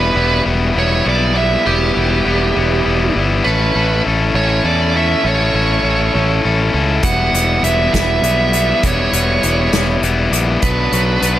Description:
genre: indie rock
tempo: 67 BPM (dotted quarters)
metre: 6/8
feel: straight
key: E dorian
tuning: A4 = 440 Hz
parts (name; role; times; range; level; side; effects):
- nasal lead guitar with a parked wah; melody; 0.0-11.4 s; G4 to F#5; -18 LUFS; right 5 dB; overdrive
- cranked stack guitar; riff; 0.0-11.4 s; F#3 to A4; -16 LUFS; left 4 dB; overdrive
- growling fingered electric bass; bass; 0.0-11.4 s; E1 to E2; -18 LUFS; right 1 dB; overdrive
- loose indie drum kit; drums; 7.0-11.4 s; hi-hat, kick drum, snare drum; -20 LUFS; equal; none
room: light reverb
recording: none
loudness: -12 LUFS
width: side -13 dB against mid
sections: 0.0-11.4 A section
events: none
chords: 0.0 Em; 3.5 A; 7.1 Em; 10.6 Bm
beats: 0.76 | 1.66 2.56 | 3.46 4.36 | 5.26 6.15 | 7.05 7.95 | 8.84 9.74 | 10.64

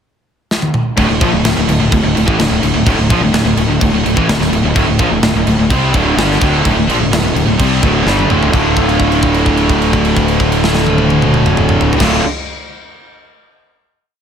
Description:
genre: heavy metal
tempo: 127 BPM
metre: 4/4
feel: straight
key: D minor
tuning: A4 = 439 Hz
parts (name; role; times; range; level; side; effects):
- tight metal drum kit; drums; 0.5-12.1 s; crash cymbal, kick drum, snare drum, toms; -16 LUFS; equal; none
- raw garage guitar; riff; 1.0-12.2 s; D2 to F4; -18 LUFS; equal; overdrive
- scooped high-gain guitar; riff; 1.0-12.2 s; D2 to C4; -16 LUFS; left 9 dB; distortion
- tight distorted guitar; riff; 1.0-12.2 s; D2 to C4; -17 LUFS; right 10 dB; distortion
- fuzz fingered electric bass; bass; 1.0-12.2 s; D1 to C2; -17 LUFS; equal; overdrive
room: studio reverb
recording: none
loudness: -10 LUFS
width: side -8 dB against mid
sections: 0.0-1.0 pickup bar; 1.0-8.5 riff; 8.5-12.3 final chord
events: drum fill 0.5-1.0, 8.1-8.5; held note 8.5-12.0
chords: 0.0 N.C.; 1.0 Dm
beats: 0.03 0.50 | 0.97 1.45 1.92 2.39 | 2.87 3.34 3.81 4.29 | 4.76 5.23 5.70 6.18 | 6.65 7.12 7.59 8.06 | 8.53 9.00 9.47 9.94 | 10.41 10.88 11.34 11.81

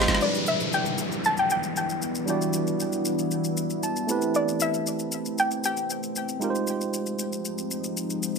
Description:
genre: amapiano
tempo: 116 BPM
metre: 4/4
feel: straight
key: E minor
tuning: A4 = 436 Hz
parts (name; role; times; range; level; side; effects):
- tine electric piano; accompaniment; 0.0-8.4 s; F#3 to A5; -29 LUFS; right 5 dB; none
- deep dark ambient pad; sustained chords; 0.0-8.4 s; E3 to G4; -30 LUFS; left 1 dB; chorus, built-in reverb
- electronic snare drum and shaker; drums; 0.0-8.4 s; none; -31 LUFS; left 3 dB; none
- soft round pluck; melody; 0.2-6.1 s; D5 to A5; -27 LUFS; left 2 dB; chorus, ping-pong delay
- downlifter; sound effects; 0.2-4.3 s; none; -32 LUFS; left 2 dB; none
room: moderate plate reverb, RT60 1.4 s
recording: bright 1980s-style digital production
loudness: -24 LUFS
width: side -5 dB against mid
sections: 0.2-8.4 A section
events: drum fill 0.0; tine electric piano fill 3.6-4.3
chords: 0.2 Em9; 4.1 Am9; 6.4 Fm9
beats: | 0.21 0.72 1.24 1.76 | 2.28 2.79 3.31 3.83 | 4.35 4.86 5.38 5.90 | 6.42 6.93 7.45 7.97

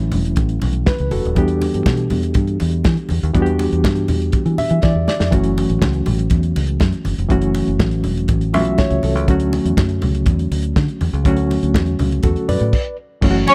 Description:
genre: disco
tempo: 121 BPM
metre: 4/4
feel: straight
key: unclear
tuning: A4 = 440 Hz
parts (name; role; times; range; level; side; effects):
- barky reed electric piano; accompaniment; 0.0-13.5 s; D3 to E5; -22 LUFS; equal; overdrive, fast tremolo
- fingered electric bass; bass; 0.0-13.4 s; D#1 to E3; -21 LUFS; equal; none
- warm soul drum kit; drums; 0.1-13.5 s; crash cymbal, hi-hat, kick drum, snare drum; -22 LUFS; equal; none
- congas; percussion; 0.1-13.5 s; none; -30 LUFS; equal; none
- clear studio violin section; second line; 13.5 s; C#4 to C#5; -10 LUFS; equal; none
room: studio ambience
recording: dry, close 1970s-style studio recording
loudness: -17 LUFS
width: mono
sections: 0.0-13.2 A section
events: reed electric piano fill 4.3-5.3, 8.3-9.3; drum fill 4.8-5.3; stop 12.7-13.2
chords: 0.0 F#m7; 1.4 Em7; 5.3 F#m7; 9.3 Dmaj7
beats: 0.38 0.87 | 1.36 1.86 2.35 2.85 | 3.35 3.84 4.33 4.83 | 5.32 5.82 6.31 6.81 | 7.30 7.79 8.29 8.78 | 9.28 9.77 10.27 10.76 | 11.26 11.75 12.24 12.74 | 13.23

